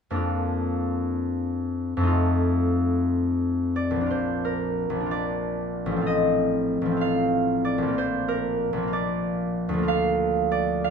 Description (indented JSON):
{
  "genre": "classical, solo harp piece",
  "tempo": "63 BPM (dotted quarters)",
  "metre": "6/8",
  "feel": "rubato",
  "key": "Bb major",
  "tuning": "A4 = 440 Hz",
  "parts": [
    { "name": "concert harp", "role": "solo", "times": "0.1-10.9 s", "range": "A1 to F5", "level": "-22 LUFS", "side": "equal", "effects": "none" }
  ],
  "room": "light reverb",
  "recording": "close, detailed microphones",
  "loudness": "-22 LUFS",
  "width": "side -6 dB against mid",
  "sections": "0.2-4.1 A section; 4.1-10.9 B section",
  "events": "none",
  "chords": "0.2 Bb/F; 2.1 F7; 4.1 Bb; 6.1 F7/A; 8.0 Bb; 9.9 Bb/D"
}